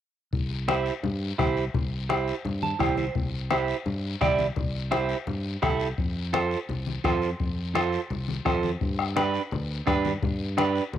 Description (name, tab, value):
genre	latin, cumbia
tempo	170 BPM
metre	4/4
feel	straight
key	C major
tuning	A4 = 440 Hz
part	fingered electric bass	bass	0.3-11.0 s	C2 to G2	-30 LUFS	equal	none
part	bombo	percussion	0.3-10.8 s	none	-29 LUFS	left 4 dB	none
part	congas	percussion	0.3-11.0 s	none	-34 LUFS	left 6 dB	none
part	guiro	percussion	0.3-11.0 s	none	-40 LUFS	left 10 dB	none
part	clean electric guitar	accompaniment	0.7-10.8 s	D4 to A5	-28 LUFS	right 6 dB	cassette tape
room	moderate spring reverb, RT60 2.1 s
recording	home recording on cassette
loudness	-24 LUFS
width	side -10 dB against mid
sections	0.3-11.0 A section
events	clean electric guitar fill 2.4-3.2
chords	0.3 C; 6.0 F; 8.8 G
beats	| 0.33 0.68 1.03 1.39 | 1.74 2.10 2.45 2.80 | 3.15 3.51 3.86 4.21 | 4.57 4.92 5.28 5.63 | 5.98 6.34 6.69 7.04 | 7.40 7.75 8.10 8.46 | 8.81 9.16 9.52 9.87 | 10.22 10.58 10.93